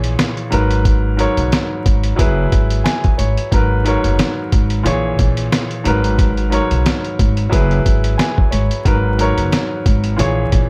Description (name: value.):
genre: hip hop, boom-bap hip-hop.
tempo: 90 BPM.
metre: 4/4.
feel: swing 56% on 16ths.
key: G# minor.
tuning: A4 = 440 Hz.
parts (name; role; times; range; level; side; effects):
warm grand piano; accompaniment; 0.0-10.7 s; G#2 to G#5; -21 LUFS; equal; high-pass filter, low-pass filter.
upright bass; bass; 0.0-10.7 s; F#1 to B1; -20 LUFS; equal; none.
dusty soul sampler-style drum kit; drums; 0.0-10.7 s; hi-hat, kick drum, snare drum; -19 LUFS; equal; overdrive.
room: little or no reverb.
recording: vinyl crackle.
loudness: -16 LUFS.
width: mono.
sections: 0.0-10.7 A section.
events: none.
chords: 0.0 A#m7b5; 0.5 G#m9; 2.2 F#9sus4; 3.5 G#m9; 4.9 A#m7b5; 5.9 G#m9; 7.5 F#9sus4; 8.9 G#m9; 10.2 A#m7b5.